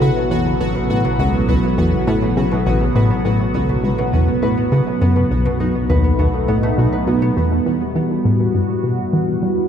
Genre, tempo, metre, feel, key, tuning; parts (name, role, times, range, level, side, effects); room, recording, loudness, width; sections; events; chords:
ambient, sequencer-driven space music; 102 BPM; 4/4; straight; A4 = 438 Hz
phased analog pad; sustained chords; 0.0-9.7 s; C#3 to B4; -20 LUFS; equal; phaser, chorus
concert harp; arpeggios; 0.0-9.7 s; B2 to B4; -24 LUFS; equal; auto-pan, tape echo
plucky analog bass; riff; 0.0-9.5 s; A1 to G3; -18 LUFS; equal; tape echo
warm sub bass; bass; 0.0-9.7 s; A1 to E2; -28 LUFS; equal
pulsing gated texture; texture; 0.0-7.4 s; F#4 to F#5; -29 LUFS; left 2 dB; chorus, built-in reverb
wet cathedral reverb, RT60 6.0 s; dreamy mix soaked in reverb; -15 LUFS; side -8 dB against mid
0.0-7.4 A section; 7.4-9.7 B section
0.0 A; 5.0 B7; 7.4 Emadd9